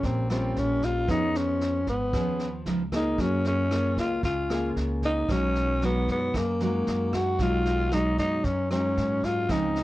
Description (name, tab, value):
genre	bossa nova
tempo	114 BPM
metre	4/4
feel	straight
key	unclear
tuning	A4 = 441 Hz
part	growling tenor saxophone	melody	0.0-9.8 s	Bb3 to F#4	-26 LUFS	left 1 dB	plate reverb
part	nylon-string guitar	accompaniment	0.0-9.8 s	F#2 to Ab4	-29 LUFS	equal	none
part	upright bass	bass	0.0-9.8 s	Ab1 to G#2	-31 LUFS	right 1 dB	none
part	vintage brush drum kit	drums	0.0-9.8 s	kick drum, rim click, snare drum	-36 LUFS	right 1 dB	none
room	light reverb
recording	worn, warbling old tape, cassette tape, warbly pitch drift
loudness	-24 LUFS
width	side -16 dB against mid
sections	0.0-9.8 A section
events	none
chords	0.0 Eb9 (rootless); 1.1 Db7/F; 2.7 Db9; 3.2 Gbmaj9; 5.3 B6